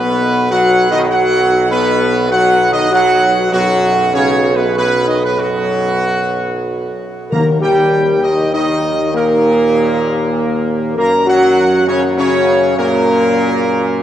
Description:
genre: classical, ceremonial fanfare.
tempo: 99 BPM.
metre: 3/4.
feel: straight.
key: unclear.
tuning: A4 = 441 Hz.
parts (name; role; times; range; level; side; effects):
bright trumpet section; melody; 0.0-14.0 s; F#4 to Bb5; -17 LUFS; right 2 dB; none.
mellow French horn section; sustained chords; 0.0-14.0 s; F#3 to Bb4; -15 LUFS; left 2 dB; none.
warm trombone section; sustained chords; 0.0-14.0 s; F#2 to Bb3; -20 LUFS; right 2 dB; none.
clear tuba; bass; 0.0-14.0 s; B1 to Gb2; -18 LUFS; right 2 dB; none.
timpani; percussion; 7.3-8.2 s; Eb3; -22 LUFS; left 1 dB; none.
room: wet cathedral reverb, RT60 5.8 s.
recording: worn, warbling old tape, cassette tape, warbly pitch drift.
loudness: -11 LUFS.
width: side -11 dB against mid.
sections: 0.0-7.3 A section; 7.3-14.0 B section.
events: none.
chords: 0.0 B5; 7.3 Eb; 11.0 Gb.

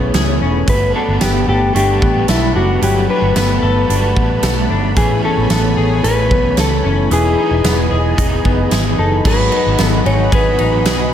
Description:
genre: dream pop.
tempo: 112 BPM.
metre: 4/4.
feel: straight.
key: A lydian.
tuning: A4 = 440 Hz.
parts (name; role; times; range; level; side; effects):
mellow electric guitar; melody; 0.0-11.1 s; E4 to C#5; -18 LUFS; left 2 dB; spring reverb, tape echo.
overdriven semi-hollow guitar; accompaniment; 0.0-11.1 s; E2 to G#4; -22 LUFS; right 4 dB; tremolo, wide subtle chorus.
lush unison pad; sustained chords; 0.0-11.1 s; A3 to B5; -24 LUFS; right 1 dB; chorus.
semi-hollow electric guitar; arpeggios; 0.0-11.1 s; E3 to A4; -20 LUFS; left 6 dB; lush chorus, tape echo.
vintage muted fingered electric bass; bass; 0.0-11.1 s; E1 to C#2; -17 LUFS; right 1 dB; none.
huge arena drum kit; drums; 0.1-11.0 s; crash cymbal, hi-hat, kick drum, ride cymbal, snare drum, tambourine; -18 LUFS; right 1 dB; none.
glockenspiel with hard plastic mallets; texture; 1.2-2.5, 7.1-11.0 s; G#5 to D#6; -31 LUFS; right 3 dB; tape echo.
room: light reverb, studio reverb.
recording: none.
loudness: -12 LUFS.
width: side -9 dB against mid.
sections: 0.0-9.3 A section; 9.3-11.1 B section.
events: none.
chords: 0.0 Amaj9; 0.7 Gmaj9; 5.0 Amaj9; 7.1 Emaj7; 9.3 G#m7.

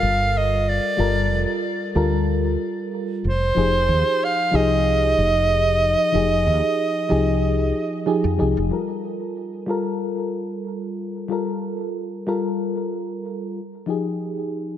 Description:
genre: sunset chillout.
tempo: 93 BPM.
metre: 4/4.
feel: straight.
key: unclear.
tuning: A4 = 442 Hz.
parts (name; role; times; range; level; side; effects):
clear soprano saxophone; melody; 0.0-8.1 s; C5 to F5; -21 LUFS; right 2 dB; ping-pong delay.
mellow FM electric piano; accompaniment; 0.0-14.8 s; F3 to Bb4; -23 LUFS; moving between left 6 dB and right 4 dB; chorus, auto-pan, low-pass filter, ping-pong delay.
woody fretless electric bass; bass; 0.0-8.7 s; F1 to F2; -22 LUFS; right 1 dB; analog chorus.
room: light reverb, small room ambience.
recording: none.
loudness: -19 LUFS.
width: side -10 dB against mid.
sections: 0.0-8.7 A section; 8.7-14.8 B section.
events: none.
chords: 0.0 Gm9; 3.2 Fm9; 8.7 Gm9; 13.6 Fm9.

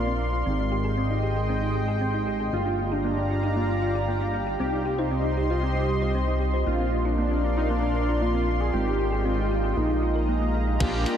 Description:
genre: synthwave.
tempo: 116 BPM.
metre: 4/4.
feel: straight.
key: unclear.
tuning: A4 = 440 Hz.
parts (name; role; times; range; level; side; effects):
lush unison pad; sustained chords; 0.0-11.2 s; Ab3 to C6; -30 LUFS; equal; chorus, sidechain pumping.
analog synth brass; stabs; 0.0-11.2 s; G3 to G4; -32 LUFS; right 2 dB; chorus, cassette tape, ping-pong delay.
chorused synth bass; bass; 0.0-11.1 s; G1 to C2; -27 LUFS; equal; none.
thumb-piano-like synth pluck; arpeggios; 0.1-11.1 s; Bb3 to C5; -33 LUFS; left 1 dB; chorus, ping-pong delay.
wide unison lead; melody; 2.5-11.2 s; Bb3 to Ab4; -29 LUFS; equal; analog delay.
electronic kick drum; drums; 10.8-10.9 s; none; -26 LUFS; equal; none.
gated 80s digital drum machine; drums; 10.8-11.2 s; crash cymbal, hi-hat; -32 LUFS; left 2 dB; none.
room: moderate huge ambient reverb, RT60 8.1 s.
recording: dreamy mix soaked in reverb.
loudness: -23 LUFS.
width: side -9 dB against mid.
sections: 0.0-10.8 A section.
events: none.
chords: 0.5 Abmaj7; 2.5 Gm7; 4.6 Cm; 6.7 Bbadd9; 8.7 Abmaj7; 9.8 Bb7sus4.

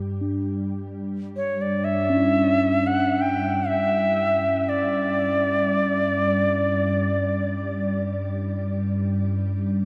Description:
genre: world meditative, free-time meditation music.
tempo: free time.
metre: none.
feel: none.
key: unclear.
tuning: A4 = 440 Hz.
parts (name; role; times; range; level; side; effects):
ethereal airy pad; drone; 0.0-9.8 s; G2 to G3; -28 LUFS; equal; ensemble chorus, built-in reverb.
bronze singing bowl; texture; 0.0-9.8 s; C#4 to G4; -30 LUFS; equal; none.
Native American-style cedar flute; melody; 1.4-8.0 s; C#5 to G5; -26 LUFS; equal; shimmer reverb, tape echo.
room: wet huge ambient reverb, RT60 7.0 s.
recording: dark, warm production.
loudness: -23 LUFS.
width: mono.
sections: 0.0-9.8 A section.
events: none.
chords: none.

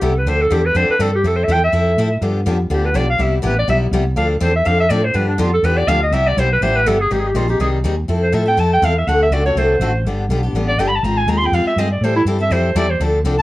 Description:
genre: acoustic string swing (jazz manouche).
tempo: 245 BPM.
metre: 4/4.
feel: swing 54% on 8ths.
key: C major.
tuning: A4 = 440 Hz.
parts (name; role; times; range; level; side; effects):
breathy clarinet; melody; 0.0-13.4 s; D4 to C6; -18 LUFS; right 1 dB; none.
picked steel-string acoustic guitar; accompaniment; 0.0-13.4 s; C3 to A4; -20 LUFS; left 2 dB; none.
woody fretless electric bass; bass; 0.0-13.4 s; G1 to A2; -18 LUFS; equal; none.
room: moderate small room reverb, RT60 0.6 s.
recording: worn, warbling old tape, cassette tape, warbly pitch drift.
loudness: -14 LUFS.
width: side -17 dB against mid.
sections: 0.0-7.1 A section; 7.1-13.4 A section.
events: clarinet solo 0.0-13.4.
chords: 0.3 Dm7; 1.2 Fmaj7; 2.2 G7; 3.2 Cmaj7; 4.2 Dm7; 5.2 G7; 6.1 Cmaj7; 7.1 Abmaj7; 8.1 Fmaj7; 9.1 D7; 10.1 G; 11.0 Ab6; 12.0 Am7.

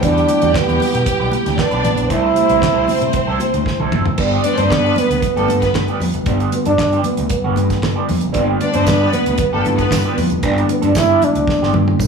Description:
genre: disco.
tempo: 115 BPM.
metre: 4/4.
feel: straight.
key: unclear.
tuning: A4 = 441 Hz.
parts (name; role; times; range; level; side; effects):
breathy trombone; melody; 0.0-12.1 s; B3 to E4; -18 LUFS; right 3 dB; none.
rich studio string section; second line; 0.0-10.1 s; A3 to G5; -21 LUFS; left 1 dB; none.
bell-like tine electric piano; accompaniment; 0.0-12.1 s; C3 to F4; -22 LUFS; left 3 dB; slow stereo tremolo.
electric guitar through a small old amp; accompaniment; 0.0-12.0 s; F3 to D5; -24 LUFS; right 6 dB; wah, wide subtle chorus.
overdriven fingered electric bass; bass; 0.0-12.1 s; F1 to C3; -20 LUFS; right 1 dB; none.
damped 70s drum kit; drums; 0.0-12.1 s; crash cymbal, handclaps, hi-hat, kick drum, snare drum, toms; -22 LUFS; right 2 dB; none.
congas; percussion; 0.0-11.9 s; none; -27 LUFS; left 4 dB; none.
tambourine; percussion; 8.9-12.1 s; none; -31 LUFS; right 11 dB; none.
room: light reverb.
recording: studio reverb.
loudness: -14 LUFS.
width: side -5 dB against mid.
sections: 0.0-4.2 A section; 4.2-12.1 B section.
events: drum fill 3.7-4.2, 11.5-12.1.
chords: 0.0 Em7; 2.1 C6; 4.2 G7.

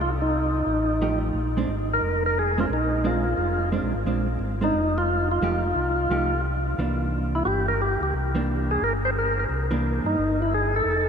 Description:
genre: jazz.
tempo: 177 BPM.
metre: 4/4.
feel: swing 63% on 8ths.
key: unclear.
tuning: A4 = 440 Hz.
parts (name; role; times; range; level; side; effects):
percussive tonewheel organ; melody; 0.0-11.1 s; Eb4 to C5; -24 LUFS; equal; slow rotary speaker.
mellow tonewheel organ; bass; 0.0-11.1 s; F1 to G2; -27 LUFS; equal; chorus vibrato, slow rotary speaker.
hollow-body jazz guitar; accompaniment; 1.0-10.2 s; E3 to G4; -30 LUFS; right 3 dB; none.
room: wet huge ambient reverb, RT60 7.8 s.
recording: in a vast, echoing space.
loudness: -22 LUFS.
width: side -7 dB against mid.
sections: 0.0-11.1 A section.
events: none.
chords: 0.0 F9; 1.3 Bb9; 5.4 F9; 6.8 C9.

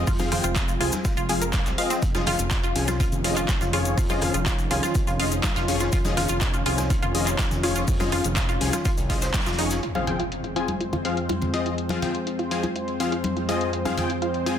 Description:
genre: progressive house.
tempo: 123 BPM.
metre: 4/4.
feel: straight.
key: F minor.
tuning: A4 = 440 Hz.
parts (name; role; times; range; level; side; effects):
lush unison pad; sustained chords; 0.0-14.6 s; F2 to C5; -30 LUFS; equal; chorus, sidechain pumping.
supersaw stab; stabs; 0.0-14.6 s; F3 to Ab5; -28 LUFS; left 3 dB; sidechain pumping, low-pass filter, tape echo.
fat analog bass; bass; 0.0-9.8 s; F1 to F2; -29 LUFS; equal; sidechain pumping.
wide unison pluck; arpeggios; 0.1-14.5 s; C4 to F5; -29 LUFS; right 1 dB; sidechain pumping, tape echo.
deep house drum kit; drums; 0.1-14.6 s; handclaps, hi-hat, rim click; -30 LUFS; left 1 dB; overdrive, sidechain pumping on hats, low-pass filter on hats, small room ambience, sidechain pumping on cymbals, low-pass filter on cymbals, low-pass filter on snare.
electronic kick drum; drums; 0.1-9.4 s; none; -26 LUFS; equal; overdrive, small room ambience.
vintage drum kit; drums; 0.1-9.8 s; hi-hat, snare drum; -39 LUFS; equal; none.
tube shaker; percussion; 0.1-9.8 s; none; -36 LUFS; left 4 dB; none.
congas; percussion; 0.2-14.1 s; none; -33 LUFS; left 1 dB; sidechain pumping on perc.
impact; sound effects; 9.8-11.8 s; none; -36 LUFS; right 1 dB; none.
room: light reverb, small room ambience.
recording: dense, heavily limited modern master, faint mains hum.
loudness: -22 LUFS.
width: side -9 dB against mid.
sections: 0.0-9.8 A section; 9.8-14.6 B section.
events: filter sweep on analog synth pad 0.0-9.8; band accent 9.3; impact 9.8-11.8; filter sweep on synth pluck 9.8-14.6; filter sweep on supersaw synth 9.8-14.6.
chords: 0.0 Fm; 2.0 Dbadd9/F; 9.8 Fm.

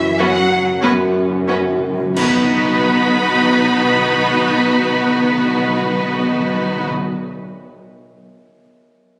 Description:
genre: cinematic, emotional film score for orchestra.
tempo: 45 BPM.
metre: 3/4.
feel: rubato.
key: B major.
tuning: A4 = 440 Hz.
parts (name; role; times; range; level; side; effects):
rich studio violin section; melody; 0.0-6.9 s; E5 to B5; -26 LUFS; equal; none.
bright small flute group; second line; 0.0-6.9 s; B4 to F#5; -27 LUFS; equal; none.
mellow French horn section; sustained chords; 0.0-6.9 s; E3 to B3; -25 LUFS; equal; none.
concert harp; arpeggios; 0.0-7.3 s; F#2 to D#5; -31 LUFS; equal; none.
rich studio cello section; bass; 0.0-6.9 s; E3 to B3; -26 LUFS; equal; none.
rich studio double bass section; bass; 0.0-6.9 s; B1 to F#2; -24 LUFS; equal; none.
timpani; percussion; 0.0-7.1 s; F#2 to B2; -28 LUFS; equal; none.
clear studio violin section; second line; 0.2-6.9 s; F#4 to B4; -24 LUFS; equal; none.
rich studio viola section; accompaniment; 0.2-6.9 s; B3 to D#4; -22 LUFS; equal; none.
clash cymbals and concert bass drum; percussion; 2.2-4.8 s; none; -28 LUFS; equal; none.
room: moderate concert hall reverb, RT60 2.0 s.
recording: recorded on a phone in the room, club reverb.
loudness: -16 LUFS.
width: mono.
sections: 0.0-2.2 A section; 2.2-6.1 B section.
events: timpani fill 0.0-2.2; slowing down 0.0-2.2; band accent 2.2-3.5.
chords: 0.0 Bsus2/F#; 2.2 B.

